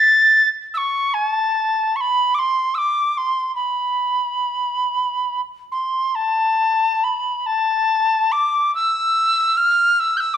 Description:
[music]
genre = celtic folk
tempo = 45-50 BPM (dotted quarters)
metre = 6/8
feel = rubato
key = unclear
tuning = A4 = 440 Hz
[part]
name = reedy wooden whistle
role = solo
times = 0.0-10.4 s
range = A5 to A6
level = -16 LUFS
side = equal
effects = none
[sound]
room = moderate recital hall reverb, RT60 1.5 s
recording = minimal, uncompressed stereo recording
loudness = -16 LUFS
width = side -10 dB against mid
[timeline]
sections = 0.0-6.2 A section; 6.2-10.4 A section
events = none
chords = none

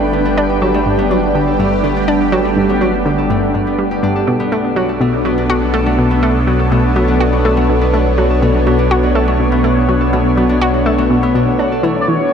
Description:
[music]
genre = ambient, sequencer-driven space music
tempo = 123 BPM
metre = 4/4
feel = straight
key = B minor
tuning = A4 = 441 Hz
[part]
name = lush unison pad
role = sustained chords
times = 0.0-12.3 s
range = B2 to G5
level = -16 LUFS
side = right 1 dB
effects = chorus, phaser
[part]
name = concert harp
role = arpeggios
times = 0.0-12.3 s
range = A3 to A4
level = -19 LUFS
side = left 4 dB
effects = auto-pan, analog delay
[part]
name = analog pluck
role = riff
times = 0.0-12.3 s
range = G2 to F#4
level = -17 LUFS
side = equal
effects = chorus, analog delay
[part]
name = round analog bass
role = bass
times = 0.0-12.3 s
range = E1 to B1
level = -19 LUFS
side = right 1 dB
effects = none
[part]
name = twinkling granular texture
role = texture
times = 0.0-12.1 s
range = D4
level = -25 LUFS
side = right 2 dB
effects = built-in reverb
[part]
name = pulse-width lead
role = melody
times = 12.0-12.3 s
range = C#5 to D5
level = -16 LUFS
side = equal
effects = chorus, cassette tape
[sound]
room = wet huge ambient reverb, RT60 8.7 s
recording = dark, warm production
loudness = -11 LUFS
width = side -7 dB against mid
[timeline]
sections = 0.0-12.1 A section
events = none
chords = 0.0 Gadd9; 4.3 Bm7

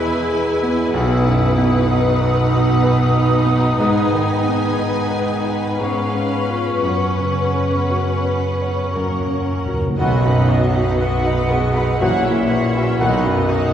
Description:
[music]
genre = classical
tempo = 56-63 BPM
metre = 3/4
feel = rubato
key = B major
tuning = A4 = 440 Hz
[part]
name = clear concert grand piano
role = melody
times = 0.0-13.7 s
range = A#1 to B5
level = -19 LUFS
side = equal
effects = none
[part]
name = clear symphonic violin section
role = melody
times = 0.0-13.7 s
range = D#5 to G#5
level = -32 LUFS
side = left 5 dB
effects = none
[part]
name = rich symphonic violin section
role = second line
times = 0.0-13.7 s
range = D#4 to B4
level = -27 LUFS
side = left 3 dB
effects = none
[part]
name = small flute group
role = second line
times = 0.0-13.7 s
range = D#5 to D#6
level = -26 LUFS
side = equal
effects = none
[part]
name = clear symphonic viola section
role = accompaniment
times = 0.0-13.7 s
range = A#3 to E4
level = -28 LUFS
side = right 2 dB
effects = none
[part]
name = mellow bassoon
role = accompaniment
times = 0.0-13.7 s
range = D#3 to B3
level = -27 LUFS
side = equal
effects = none
[part]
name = warm French horn section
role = sustained chords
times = 0.0-13.4 s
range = A#3 to G#4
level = -27 LUFS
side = left 1 dB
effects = none
[part]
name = rich symphonic cello section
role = bass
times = 0.0-13.7 s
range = E2 to B2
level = -23 LUFS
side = right 1 dB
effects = none
[part]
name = timpani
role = percussion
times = 8.9-10.0 s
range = F#2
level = -26 LUFS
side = equal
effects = none
[part]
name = warm oboe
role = second line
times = 10.0-13.7 s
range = B4 to D#5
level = -28 LUFS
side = right 1 dB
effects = none
[part]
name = dark trombone section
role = sustained chords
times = 10.0-13.4 s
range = D#3 to F#3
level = -28 LUFS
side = right 3 dB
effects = none
[part]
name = warm trumpet section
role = stabs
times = 10.0-13.4 s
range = F#5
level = -27 LUFS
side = right 2 dB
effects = none
[part]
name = clear symphonic double bass section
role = bass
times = 10.0-13.7 s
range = A#1 to B1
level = -27 LUFS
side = right 2 dB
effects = none
[sound]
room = wet scoring stage reverb, RT60 1.6 s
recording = heard from further back in the room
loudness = -15 LUFS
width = side -9 dB against mid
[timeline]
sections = 0.0-10.0 A section; 10.0-13.7 B section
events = timpani fill 9.0-10.0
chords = 0.0 E; 0.9 B; 3.8 G#m; 5.8 C#7/G#; 6.8 F#sus4; 9.0 F#; 10.0 B; 12.0 F#7/A#; 13.0 B

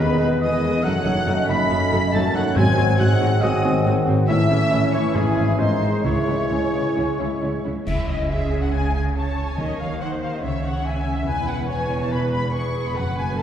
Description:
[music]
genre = classical, dramatic, fast romantic movement for symphony orchestra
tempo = 140 BPM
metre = 4/4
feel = rubato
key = C# minor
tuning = A4 = 442 Hz
[part]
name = rich symphonic violin section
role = melody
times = 0.0-13.4 s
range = D#5 to B6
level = -31 LUFS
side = left 3 dB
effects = none
[part]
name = clear oboe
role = second line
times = 0.0-7.6 s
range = G#4 to B5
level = -29 LUFS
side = equal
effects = none
[part]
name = mellow clarinet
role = second line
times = 0.0-7.6 s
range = B3 to E4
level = -29 LUFS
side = equal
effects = none
[part]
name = mellow large flute ensemble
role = second line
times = 0.0-7.9 s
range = B#4 to G#5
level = -29 LUFS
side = equal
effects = none
[part]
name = warm symphonic violin section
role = second line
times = 0.0-13.4 s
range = G#4 to C#6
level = -30 LUFS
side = left 2 dB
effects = none
[part]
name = clear symphonic viola section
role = accompaniment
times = 0.0-13.4 s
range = G#3 to E5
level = -30 LUFS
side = right 1 dB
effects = none
[part]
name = warm bassoon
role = accompaniment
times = 0.0-7.6 s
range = E3 to A3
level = -30 LUFS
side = right 2 dB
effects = none
[part]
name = clear trombone section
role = sustained chords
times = 0.0-7.6 s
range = D#3 to A3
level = -30 LUFS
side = right 3 dB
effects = none
[part]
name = dark French horn section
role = sustained chords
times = 0.0-7.6 s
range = G#3 to G#4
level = -27 LUFS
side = left 1 dB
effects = none
[part]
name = concert harp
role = arpeggios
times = 0.0-13.4 s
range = E2 to C#5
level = -28 LUFS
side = left 2 dB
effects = none
[part]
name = rich symphonic cello section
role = bass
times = 0.0-13.4 s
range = E2 to Eb3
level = -26 LUFS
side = right 1 dB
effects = none
[part]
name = warm symphonic double bass section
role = bass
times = 0.0-13.4 s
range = E1 to Eb2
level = -27 LUFS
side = right 1 dB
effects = none
[part]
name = timpani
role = percussion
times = 2.6-6.7, 9.6-10.2 s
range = G#2 to Eb3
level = -26 LUFS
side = equal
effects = none
[part]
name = clash cymbals and concert bass drum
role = percussion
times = 7.9-8.7 s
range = none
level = -30 LUFS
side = equal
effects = none
[sound]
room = wet concert hall reverb, RT60 1.9 s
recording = heard from further back in the room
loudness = -18 LUFS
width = side -9 dB against mid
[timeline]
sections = 0.0-7.9 A section; 7.9-13.4 B section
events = band accent 7.9-8.3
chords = 0.0 Emaj7; 0.8 D#m7b5/F#; 2.6 G#7; 4.3 A; 5.2 C#m/G#; 5.6 G#; 6.0 C#m; 9.6 Cdim/Eb; 10.4 C#m; 11.3 E

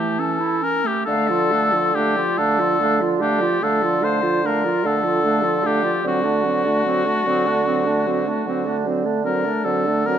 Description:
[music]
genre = classical, slow romantic movement for wind quintet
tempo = 44-52 BPM (dotted quarters)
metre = 12/8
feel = rubato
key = D minor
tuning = A4 = 440 Hz
[part]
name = concert flute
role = melody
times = 0.0-10.2 s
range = C5 to A5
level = -32 LUFS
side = left 9 dB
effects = none
[part]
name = mellow oboe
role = second line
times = 0.0-10.2 s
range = F#4 to C5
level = -21 LUFS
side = left 3 dB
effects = none
[part]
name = mellow French horn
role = accompaniment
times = 0.0-10.2 s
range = E3 to A3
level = -25 LUFS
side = equal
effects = none
[part]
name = warm clarinet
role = accompaniment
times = 0.0-10.2 s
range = A3 to F4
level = -25 LUFS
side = right 8 dB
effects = none
[part]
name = warm bassoon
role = bass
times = 1.1-10.2 s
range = D3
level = -23 LUFS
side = right 4 dB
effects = none
[sound]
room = moderate concert hall reverb, RT60 2.3 s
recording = none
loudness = -17 LUFS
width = side -9 dB against mid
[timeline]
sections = 0.0-1.1 A section; 1.1-10.2 B section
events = none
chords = 0.0 A; 1.1 Dm; 6.0 D7

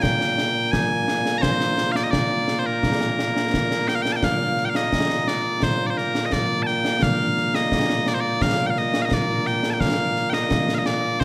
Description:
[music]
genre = scottish traditional, Scottish pipe music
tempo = 86 BPM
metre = 2/4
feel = straight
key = Bb mixolydian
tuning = A4 = 440 Hz
[part]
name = loud bright bagpipes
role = melody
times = 0.0-11.2 s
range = Bb2 to Bb5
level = -24 LUFS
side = equal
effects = slapback echo
[part]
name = concert snare drum and concert bass drum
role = drums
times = 0.0-11.2 s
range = none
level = -27 LUFS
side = equal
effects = none
[sound]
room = moderate concert hall reverb, RT60 2.5 s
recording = none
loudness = -22 LUFS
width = mono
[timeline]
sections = 0.0-4.2 A section; 4.2-11.2 B section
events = none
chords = none

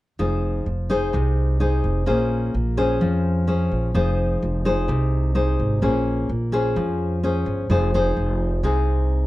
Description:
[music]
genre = bossa nova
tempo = 128 BPM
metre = 4/4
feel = straight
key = F minor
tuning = A4 = 439 Hz
[part]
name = nylon-string guitar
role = accompaniment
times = 0.2-9.3 s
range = C3 to C5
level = -22 LUFS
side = left 2 dB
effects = none
[part]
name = upright bass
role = bass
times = 0.2-9.3 s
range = F1 to F2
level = -22 LUFS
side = right 1 dB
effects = none
[sound]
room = light reverb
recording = dark, warm production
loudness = -19 LUFS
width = side -16 dB against mid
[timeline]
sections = 0.2-7.7 A section; 7.7-9.3 B section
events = none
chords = 0.2 Fm7; 2.1 Bbm9; 4.0 Fm7; 5.8 Bbm9; 7.7 Fm7

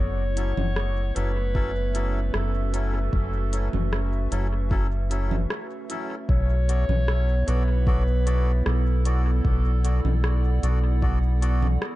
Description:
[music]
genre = ambient dub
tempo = 76 BPM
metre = 4/4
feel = straight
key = F# minor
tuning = A4 = 440 Hz
[part]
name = mellow clarinet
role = melody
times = 0.0-10.6 s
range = A4 to C#5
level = -33 LUFS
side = left 1 dB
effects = dub echo
[part]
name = warbly tape-like pad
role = sustained chords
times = 0.0-12.0 s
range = A3 to F#5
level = -34 LUFS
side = right 3 dB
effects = chorus, built-in reverb
[part]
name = round analog bass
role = bass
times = 0.0-11.8 s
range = F#1 to B1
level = -22 LUFS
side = equal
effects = none
[part]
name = melodica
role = stabs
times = 0.4-11.7 s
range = F#3 to D5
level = -35 LUFS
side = left 1 dB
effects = dub echo
[part]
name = organic electronic drum kit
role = drums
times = 0.4-12.0 s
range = congas, hi-hat, rim click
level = -32 LUFS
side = right 1 dB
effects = dub echo
[part]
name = electronic kick drum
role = drums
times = 1.6-11.2 s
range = none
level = -25 LUFS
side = equal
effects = overdrive
[sound]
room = little or no reverb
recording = dark, warm production, nothing above 10.9 kHz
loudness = -21 LUFS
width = side -17 dB against mid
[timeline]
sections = 0.0-12.0 A section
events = none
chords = 0.0 F#m7; 6.3 Bm7

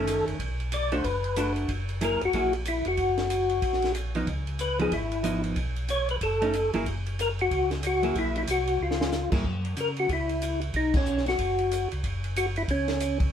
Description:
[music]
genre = soul jazz organ trio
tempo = 186 BPM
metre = 4/4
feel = swing 62% on 8ths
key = F# mixolydian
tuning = A4 = 439 Hz
[part]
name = percussive tonewheel organ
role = melody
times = 0.0-13.2 s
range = C#4 to D5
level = -26 LUFS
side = left 2 dB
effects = slow rotary speaker
[part]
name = archtop guitar, miked and amplified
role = accompaniment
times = 0.0-9.4 s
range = D#3 to G#4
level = -30 LUFS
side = right 2 dB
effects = none
[part]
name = mellow tonewheel organ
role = bass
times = 0.0-13.3 s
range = E#1 to C#3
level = -31 LUFS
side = equal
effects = chorus vibrato, slow rotary speaker
[part]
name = compact cocktail drum kit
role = drums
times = 0.1-13.3 s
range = crash cymbal, hi-hat, kick drum, ride cymbal, snare drum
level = -33 LUFS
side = equal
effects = none
[sound]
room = moderate studio reverb, RT60 0.6 s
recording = band playing live in one room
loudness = -25 LUFS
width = side -8 dB against mid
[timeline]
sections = 0.0-9.5 A section; 9.5-13.3 A section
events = drum fill 8.8-9.1; band accent 10.9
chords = 0.4 Bm7; 1.7 F#9; 4.3 C#9; 5.6 B7sus2; 6.9 F#9; 8.8 C#; 9.5 F#5; 10.7 Bsus2; 12.0 F#5

